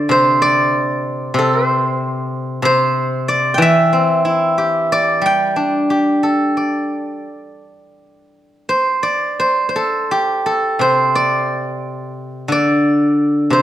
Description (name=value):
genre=chinese traditional, Chinese solo plucked strings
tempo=83-95 BPM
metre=4/4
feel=rubato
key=unclear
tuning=A4 = 440 Hz
part: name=steel-string zither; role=solo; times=0.0-13.6 s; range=C3 to G5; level=-14 LUFS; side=equal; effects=none
room=moderate recital hall reverb, RT60 1.5 s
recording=none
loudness=-14 LUFS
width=side -12 dB against mid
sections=0.0-8.0 A section; 8.0-13.6 B section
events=none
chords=none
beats=| 0.10 0.74 1.37 2.00 | 2.64 3.28 3.93 4.58 | 5.24 5.90 6.58 7.26 | 7.97 8.69 9.41 10.12 | 10.81 11.49 12.17 12.85 | 13.54